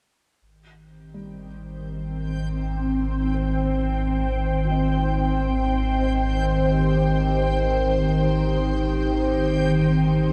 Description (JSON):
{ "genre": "ambient", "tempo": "free time", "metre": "none", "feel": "none", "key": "Ab major", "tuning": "A4 = 442 Hz", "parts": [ { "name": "warm sub bass", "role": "bass", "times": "0.4-10.3 s", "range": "Ab1", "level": "-29 LUFS", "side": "equal", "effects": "tube saturation" }, { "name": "overtone-sweeping drone", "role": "drone", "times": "1.1-10.3 s", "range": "Eb3 to G4", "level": "-28 LUFS", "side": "equal", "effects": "chorus, built-in reverb" }, { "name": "backwards swelling texture", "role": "texture", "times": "1.5-10.3 s", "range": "G5", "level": "-43 LUFS", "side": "equal", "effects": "built-in reverb" }, { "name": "ethereal airy pad", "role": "sustained chords", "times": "1.9-10.3 s", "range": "Eb3 to G5", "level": "-26 LUFS", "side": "equal", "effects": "ensemble chorus, built-in reverb, phaser" }, { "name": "felt-muted upright piano", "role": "arpeggios", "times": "1.1-10.3 s", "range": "G3 to Eb5", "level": "-45 LUFS", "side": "equal", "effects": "none" } ], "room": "wet huge ambient reverb, RT60 8.6 s", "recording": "cassette tape", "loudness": "-22 LUFS", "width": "mono", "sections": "0.4-10.3 A section", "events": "fade-in on synth texture 0.4-10.3", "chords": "0.4 Abmaj7" }